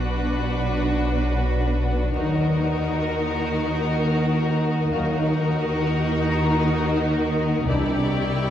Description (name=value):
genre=cinematic, suspense film score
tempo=65 BPM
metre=3/4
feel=straight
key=unclear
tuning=A4 = 440 Hz
part: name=rich symphonic violin section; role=melody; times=0.0-8.5 s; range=Bb4 to D5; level=-31 LUFS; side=left 4 dB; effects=none
part: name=rich symphonic violin section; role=second line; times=0.0-8.5 s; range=F#4 to G4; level=-31 LUFS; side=left 3 dB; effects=none
part: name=clear symphonic viola section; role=accompaniment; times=0.0-8.5 s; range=D4 to E4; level=-29 LUFS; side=equal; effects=none
part: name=ethereal airy pad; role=sustained chords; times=0.0-8.5 s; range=G4 to Bb5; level=-33 LUFS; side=equal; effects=ensemble chorus, built-in reverb
part: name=warm French horn section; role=sustained chords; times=0.0-8.0 s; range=E3 to Eb4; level=-30 LUFS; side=equal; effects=none
part: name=rich symphonic cello section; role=bass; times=0.0-8.5 s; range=B2 to Eb3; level=-27 LUFS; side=equal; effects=none
part: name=rich symphonic double bass section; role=bass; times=0.0-8.5 s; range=B1 to Eb2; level=-24 LUFS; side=right 1 dB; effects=none
part: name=Celtic harp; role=texture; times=0.0-8.5 s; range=F4 to Bb5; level=-34 LUFS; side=left 5 dB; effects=none
part: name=warm symphonic violin section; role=texture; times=0.0-1.7, 7.7-8.5 s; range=G5 to F#6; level=-38 LUFS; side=left 4 dB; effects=none
room=wet scoring stage reverb, RT60 2.0 s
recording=heard from further back in the room, vinyl crackle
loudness=-20 LUFS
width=side -10 dB against mid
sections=0.0-8.5 A section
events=none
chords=0.0 Bm; 2.2 Ebm; 7.7 Cadd9